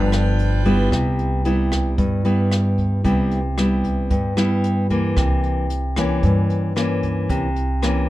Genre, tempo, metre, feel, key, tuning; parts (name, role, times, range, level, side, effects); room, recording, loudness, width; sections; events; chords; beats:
bossa nova; 113 BPM; 4/4; straight; C major; A4 = 444 Hz
nylon-string guitar; accompaniment; 0.0-8.1 s; G2 to Fb4; -20 LUFS; left 1 dB
pipe organ, full organ; sustained chords; 0.0-0.9 s; F4 to G5; -28 LUFS; right 3 dB
upright bass; bass; 0.0-8.1 s; G1 to G2; -21 LUFS; right 1 dB
jazz brush drum kit; drums; 0.1-7.9 s; hi-hat, kick drum, rim click; -26 LUFS; equal
light reverb; dark, warm production; -17 LUFS; side -16 dB against mid
0.9-8.1 A section
0.0 G7; 0.9 Cmaj7; 5.2 C7b9
0.39 | 0.92 1.45 1.98 2.51 | 3.04 3.58 4.11 4.64 | 5.17 5.70 6.23 6.76 | 7.29 7.82